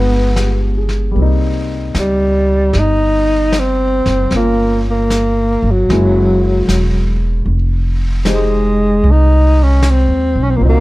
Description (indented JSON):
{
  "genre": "jazz ballad",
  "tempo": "76 BPM",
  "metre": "4/4",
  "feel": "swing 67% on 8ths",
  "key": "F minor",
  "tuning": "A4 = 440 Hz",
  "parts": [
    { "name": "breathy tenor saxophone", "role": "melody", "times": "0.0-10.8 s", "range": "Gb3 to Eb4", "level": "-14 LUFS", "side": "equal", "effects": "plate reverb" },
    { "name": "dark concert grand piano", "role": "accompaniment", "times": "0.0-10.8 s", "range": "Bb2 to C5", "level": "-21 LUFS", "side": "left 1 dB", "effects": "none" },
    { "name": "upright bass", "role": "bass", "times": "0.0-10.8 s", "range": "Fb1 to Eb2", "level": "-14 LUFS", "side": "equal", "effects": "none" },
    { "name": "vintage brush drum kit", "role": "drums", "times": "0.4-10.8 s", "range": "brushed snare drum, hi-hat, snare drum", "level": "-25 LUFS", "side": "left 1 dB", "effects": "none" }
  ],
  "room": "little or no reverb",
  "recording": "dark, warm production",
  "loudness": "-11 LUFS",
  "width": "side -19 dB against mid",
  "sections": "0.0-10.8 A section",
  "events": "none",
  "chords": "0.0 G7b9; 1.1 Cm7; 4.3 Gm7b5; 5.9 Gb9; 7.5 Fm9",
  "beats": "0.35 | 1.15 1.94 2.73 3.52 | 4.31 5.10 5.89 6.68 | 7.47 8.26 9.04 9.83 | 10.62"
}